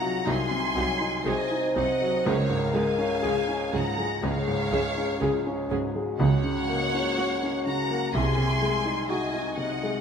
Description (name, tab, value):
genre	classical, romantic movement for piano and orchestra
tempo	61 BPM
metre	4/4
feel	rubato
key	Db major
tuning	A4 = 440 Hz
part	rich studio violin section	melody	0.0-10.0 s	F5 to C6	-32 LUFS	equal	none
part	warm baby grand piano	melody	0.0-10.0 s	C2 to Ab4	-28 LUFS	left 2 dB	none
part	rich studio violin section	second line	0.0-10.0 s	Db5 to Ab5	-34 LUFS	left 1 dB	none
part	mellow French horn section	sustained chords	0.0-10.0 s	Eb4 to C5	-31 LUFS	left 2 dB	none
part	rich studio viola section	accompaniment	0.3-9.8 s	Gb3 to Ab4	-36 LUFS	right 2 dB	none
part	rich studio cello section	bass	0.3-8.9 s	C3 to Db3	-31 LUFS	right 4 dB	none
part	rich studio double bass section	bass	0.3-8.9 s	C2 to Db2	-35 LUFS	right 5 dB	none
part	timpani	percussion	2.3-7.6 s	Db3	-37 LUFS	right 2 dB	none
room	wet concert hall reverb, RT60 2.4 s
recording	minimal, uncompressed stereo recording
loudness	-23 LUFS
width	side -7 dB against mid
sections	0.0-10.0 A section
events	none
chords	0.0 Ab7/C; 2.3 Db; 6.2 Gb/Db; 8.1 Ab7/C